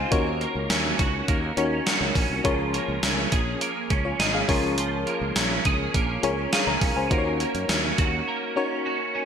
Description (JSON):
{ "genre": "1980s-style pop", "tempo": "103 BPM", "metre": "4/4", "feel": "straight", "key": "Eb minor", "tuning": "A4 = 440 Hz", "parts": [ { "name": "FM electric piano with tremolo", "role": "accompaniment", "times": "0.0-9.2 s", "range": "C4 to Bb5", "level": "-28 LUFS", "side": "left 4 dB", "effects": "none" }, { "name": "twelve-string electric guitar", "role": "riff", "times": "0.0-9.2 s", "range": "Eb3 to Ab4", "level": "-27 LUFS", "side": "right 4 dB", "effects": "ensemble chorus, ping-pong delay" }, { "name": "sustaining fretless electric bass", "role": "bass", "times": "0.0-8.2 s", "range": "Ab1 to Gb2", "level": "-30 LUFS", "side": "equal", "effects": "none" }, { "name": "gated 80s digital drum machine", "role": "drums", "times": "0.1-8.1 s", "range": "hi-hat, kick drum, snare drum, tambourine", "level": "-25 LUFS", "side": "equal", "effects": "gated reverb, gated reverb snare" } ], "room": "moderate lush hall reverb, RT60 1.7 s", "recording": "bright 1980s-style digital production", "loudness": "-22 LUFS", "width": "side -7 dB against mid", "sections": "0.0-9.2 A section", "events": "break 8.3-9.2", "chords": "0.1 Ebm7; 2.4 Db6; 4.5 Bbm7; 7.1 Ebm7", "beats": "| 0.12 0.70 1.28 1.87 | 2.45 3.03 3.61 4.20 | 4.78 5.36 5.94 6.53 | 7.11 7.69 8.27 8.86" }